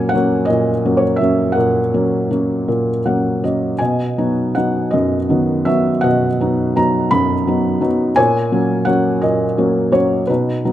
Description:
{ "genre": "classical, lyrical solo piano", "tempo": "52-58 BPM (dotted quarters)", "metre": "6/8", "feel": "rubato", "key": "unclear", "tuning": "A4 = 440 Hz", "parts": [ { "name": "felt-muted upright piano", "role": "solo", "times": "0.0-10.7 s", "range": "F#2 to B5", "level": "-14 LUFS", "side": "equal", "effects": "none" } ], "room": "light reverb", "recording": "close, detailed microphones", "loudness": "-14 LUFS", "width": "side -12 dB against mid", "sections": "0.0-10.7 A section", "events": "felt piano fill 2.7-3.8", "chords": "0.0 F#/A#; 3.8 B; 8.2 F#/A#" }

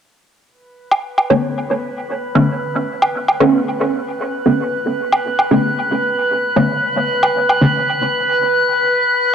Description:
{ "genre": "dub techno", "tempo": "114 BPM", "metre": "4/4", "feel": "swing 54% on 16ths", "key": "B minor", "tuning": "A4 = 440 Hz", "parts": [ { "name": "drifting glass-harmonics texture", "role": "texture", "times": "1.2-9.3 s", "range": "B4", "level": "-18 LUFS", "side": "equal", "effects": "chorus, built-in reverb" }, { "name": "woodblock", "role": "percussion", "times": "0.9-7.6 s", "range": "none", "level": "-18 LUFS", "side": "equal", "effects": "overdrive, dub echo" }, { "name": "filtered dub chord stab", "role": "stabs", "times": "1.3-8.6 s", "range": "D3 to C#4", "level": "-17 LUFS", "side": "equal", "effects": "phaser, cassette tape, dub echo" } ], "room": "moderate echo chamber reverb, RT60 2.3 s", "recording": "dry, gritty hardware recording, transformer saturation", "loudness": "-14 LUFS", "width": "side -8 dB against mid", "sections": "0.5-9.3 A section", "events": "filter sweep on synth stab 0.5-9.3", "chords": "0.5 Bm9" }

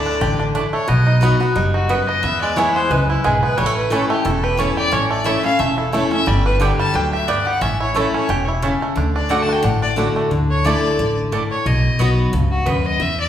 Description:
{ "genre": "bluegrass", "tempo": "178 BPM", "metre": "4/4", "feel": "swing 55% on 8ths", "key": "D major", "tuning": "A4 = 440 Hz", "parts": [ { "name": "clear fiddle", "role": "melody", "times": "0.0-13.3 s", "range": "E4 to A5", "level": "-22 LUFS", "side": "left 2 dB", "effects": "none" }, { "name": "picked steel-string acoustic guitar", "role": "accompaniment", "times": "0.0-13.3 s", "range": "E2 to G4", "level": "-21 LUFS", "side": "left 1 dB", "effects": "none" }, { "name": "bluegrass banjo", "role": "arpeggios", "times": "0.0-10.3 s", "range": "D3 to G4", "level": "-22 LUFS", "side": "right 2 dB", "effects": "none" }, { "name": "upright bass", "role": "bass", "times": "0.2-13.3 s", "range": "E1 to E2", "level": "-21 LUFS", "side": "equal", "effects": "none" }, { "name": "mandolin", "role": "stabs", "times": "0.5-12.8 s", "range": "A3 to B5", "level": "-25 LUFS", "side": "right 3 dB", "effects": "none" } ], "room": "wet large studio reverb, RT60 1.5 s", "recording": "band playing live in one room", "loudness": "-15 LUFS", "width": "side -10 dB against mid", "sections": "0.0-10.3 A section; 10.3-13.3 A section", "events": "none", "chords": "0.0 Dsus2; 0.9 B; 2.2 E; 3.6 A; 6.3 G; 7.6 A; 9.0 D; 10.3 Dsus2; 11.7 B" }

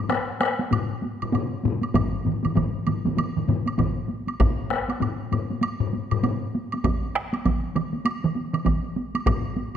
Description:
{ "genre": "japanese traditional, taiko drum ensemble", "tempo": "98 BPM", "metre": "4/4", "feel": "swing 60% on 16ths", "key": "none", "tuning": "none", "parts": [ { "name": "taiko ensemble", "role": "percussion", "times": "0.1-9.7 s", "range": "none", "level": "-29 LUFS", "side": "right 1 dB", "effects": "none" }, { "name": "taiko ensemble", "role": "percussion", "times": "0.1-9.8 s", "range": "none", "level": "-26 LUFS", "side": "left 5 dB", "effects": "none" }, { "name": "woodblock", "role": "percussion", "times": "0.1-9.4 s", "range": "none", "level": "-33 LUFS", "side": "right 4 dB", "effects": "none" }, { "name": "taiko ensemble", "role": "percussion", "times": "1.9-9.4 s", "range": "none", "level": "-26 LUFS", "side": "equal", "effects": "none" }, { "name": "taiko ensemble", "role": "percussion", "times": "2.0-8.8 s", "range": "none", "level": "-27 LUFS", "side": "right 5 dB", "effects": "none" } ], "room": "wet scoring stage reverb, RT60 1.5 s", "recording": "none", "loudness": "-23 LUFS", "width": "side -9 dB against mid", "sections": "0.0-9.8 A section", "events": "none", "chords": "none" }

